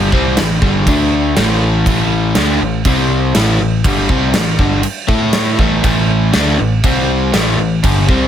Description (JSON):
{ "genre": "hard rock", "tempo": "121 BPM", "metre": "4/4", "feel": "straight", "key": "unclear", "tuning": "A4 = 440 Hz", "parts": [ { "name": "overdriven semi-hollow guitar", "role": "riff", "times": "0.0-8.3 s", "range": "G2 to A4", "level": "-14 LUFS", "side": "left 1 dB", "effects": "none" }, { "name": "modern bright picked electric bass", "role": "bass", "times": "0.0-8.3 s", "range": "G1 to A2", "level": "-18 LUFS", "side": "equal", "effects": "none" }, { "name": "gated 80s drum kit", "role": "drums", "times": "0.1-8.2 s", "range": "crash cymbal, kick drum, snare drum", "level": "-16 LUFS", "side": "equal", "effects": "none" } ], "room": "little or no reverb", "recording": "none", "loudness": "-11 LUFS", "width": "side -10 dB against mid", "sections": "0.0-8.3 A section", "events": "none", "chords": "0.0 A5; 0.9 D5; 1.4 A5; 2.9 C5; 3.4 A5; 6.8 C5; 7.3 A5" }